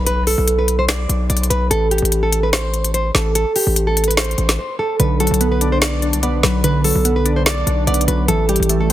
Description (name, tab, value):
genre	hip hop, trap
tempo	146 BPM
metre	4/4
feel	half-time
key	B phrygian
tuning	A4 = 440 Hz
part	nylon-string guitar	melody	0.0-8.9 s	G4 to D5	-20 LUFS	right 2 dB	none
part	hard-hitting 808-style bass	bass	0.0-8.9 s	A1 to C2	-18 LUFS	equal	none
part	impact and riser	sound effects	0.0-0.1, 8.3-8.9 s	none	barely audible	none	none
part	trap drum kit	drums	0.1-8.9 s	hi-hat, snare drum	-19 LUFS	left 2 dB	soft clipping on snare
part	glassy digital keys	accompaniment	5.0-8.9 s	D3 to D5	-19 LUFS	right 1 dB	chorus
room	digital ambience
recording	dense, heavily limited modern master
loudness	-14 LUFS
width	side -13 dB against mid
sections	0.0-8.9 A section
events	break 4.6-5.0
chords	0.0 Bm; 1.7 Am; 5.0 Bm; 8.3 A7(no3)